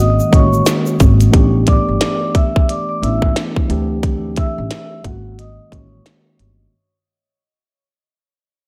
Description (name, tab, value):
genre	hip hop, boom-bap hip-hop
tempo	89 BPM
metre	4/4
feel	swing 62% on 16ths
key	unclear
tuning	A4 = 441 Hz
part	vibraphone with soft mallets	melody	0.0-6.0 s	F#4 to E6	-24 LUFS	equal	high-pass filter, low-pass filter, tape echo
part	mellow tine electric piano	accompaniment	0.0-6.8 s	D#3 to G4	-22 LUFS	equal	cassette tape, high-pass filter, low-pass filter
part	upright bass	bass	0.0-6.7 s	G1 to D2	-18 LUFS	equal	none
part	egg shaker	percussion	0.2-1.3 s	none	-34 LUFS	equal	none
part	minimal click drum kit	drums	0.3-6.6 s	hi-hat, kick drum, snare drum	-17 LUFS	equal	none
room	studio ambience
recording	none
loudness	-15 LUFS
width	mono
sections	0.0-1.3 A section; 1.3-6.7 B section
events	fade-out 1.3-6.7; filter sweep 1.3-6.7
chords	0.0 G#9sus4; 1.3 A9sus4; 3.7 D9sus4; 5.0 G#9sus4